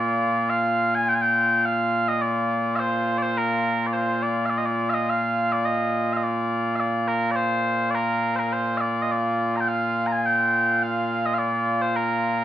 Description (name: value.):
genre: scottish traditional, Scottish pipe music.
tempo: 105 BPM.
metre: 4/4.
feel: straight.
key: Bb major.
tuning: A4 = 437 Hz.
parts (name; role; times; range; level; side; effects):
mellow small bagpipes; solo; 0.0-12.4 s; Bb2 to Bb5; -21 LUFS; equal; none.
room: moderate studio reverb, RT60 0.7 s.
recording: band playing live in one room.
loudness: -21 LUFS.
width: side -12 dB against mid.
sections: 0.0-12.4 A section.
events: none.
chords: none.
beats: 0.51 1.08 1.65 | 2.22 2.79 3.37 3.94 | 4.51 5.08 5.65 6.22 | 6.79 7.37 7.94 8.51 | 9.08 9.65 10.22 10.79 | 11.37 11.94.